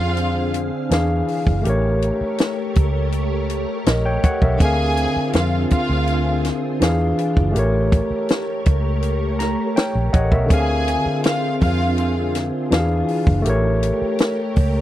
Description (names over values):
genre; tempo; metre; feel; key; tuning
lush 1970s-style soul; 81 BPM; 4/4; straight; unclear; A4 = 440 Hz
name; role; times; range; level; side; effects
rich studio violin section; second line; 0.0-12.3 s; F4 to Ab5; -24 LUFS; equal; none
barky tine electric piano; accompaniment; 0.0-14.8 s; D3 to Bb5; -22 LUFS; left 1 dB; none
soft string machine; sustained chords; 0.0-14.8 s; D3 to F5; -26 LUFS; right 1 dB; ensemble chorus
vintage muted fingered electric bass; bass; 0.0-14.8 s; F#1 to F2; -21 LUFS; equal; none
compact cocktail drum kit; drums; 0.2-14.7 s; hi-hat, kick drum, snare drum; -18 LUFS; equal; none
room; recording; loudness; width
light reverb; dry, close 1970s-style studio recording; -17 LUFS; side -13 dB against mid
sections
0.0-14.8 A section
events
tine electric piano fill 9.0-10.5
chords
0.0 Dm7b5; 0.9 E7b9; 1.7 A7b9; 4.6 Dm7b5; 6.8 E7b9; 7.6 A7b9; 10.5 Dm7b5; 12.7 E7b9; 13.5 A7b9